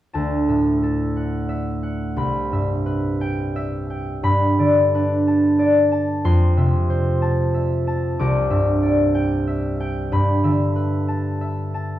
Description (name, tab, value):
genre	classical, solo harp piece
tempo	86-96 BPM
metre	3/4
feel	rubato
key	unclear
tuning	A4 = 440 Hz
part	concert harp	solo	0.1-12.0 s	C2 to D6	-18 LUFS	equal	none
room	moderate recital hall reverb, RT60 1.7 s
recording	dark, warm production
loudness	-18 LUFS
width	side -13 dB against mid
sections	0.1-12.0 A section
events	none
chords	0.1 Dadd9; 2.2 Cmaj7; 4.2 Gadd9; 6.2 Fmaj7; 8.2 Cadd9; 10.1 G69